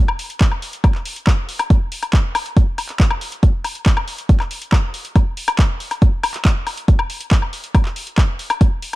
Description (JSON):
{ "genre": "trance", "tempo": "139 BPM", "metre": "4/4", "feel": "straight", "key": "none", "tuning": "none", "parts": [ { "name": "techno drum kit", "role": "drums", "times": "0.1-9.0 s", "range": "handclaps, hi-hat, woodblock", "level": "-23 LUFS", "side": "left 2 dB", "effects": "overdrive" }, { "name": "electronic kick drum", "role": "drums", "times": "0.4-8.7 s", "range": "none", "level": "-13 LUFS", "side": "equal", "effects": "none" } ], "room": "digital ambience", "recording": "dark, warm production", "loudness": "-15 LUFS", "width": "side -19 dB against mid", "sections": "0.0-9.0 A section", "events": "none", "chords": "none" }